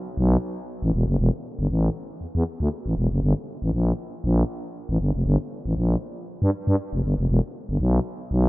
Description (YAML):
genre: funk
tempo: 118 BPM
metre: 4/4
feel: swing 56% on 16ths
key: unclear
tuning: A4 = 439 Hz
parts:
  - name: growling FM bass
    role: solo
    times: 0.2-8.5 s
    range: E1 to G2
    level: -22 LUFS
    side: equal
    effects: none
room: light reverb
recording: rough home demo mix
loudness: -22 LUFS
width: side -19 dB against mid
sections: 0.0-7.3 A section; 7.3-8.5 B section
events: none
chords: none